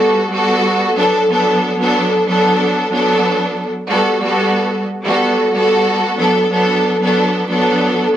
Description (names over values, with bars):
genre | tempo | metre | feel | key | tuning
hip hop | 92 BPM | 4/4 | swing 56% on 16ths | B minor | A4 = 439 Hz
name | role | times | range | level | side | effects
clear studio string section | solo | 0.0-8.2 s | F#3 to A4 | -12 LUFS | equal | high-pass filter, low-pass filter
room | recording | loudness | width
light reverb, studio reverb | dry, gritty hardware recording, vinyl crackle | -12 LUFS | side -11 dB against mid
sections
0.0-8.2 A section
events
none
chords
0.0 Gmaj9; 1.0 Bm7; 3.9 Gmaj9; 6.2 Bm7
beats
0.64 | 1.29 1.95 2.60 3.25 | 3.90 4.55 5.21 5.86 | 6.51 7.16 7.81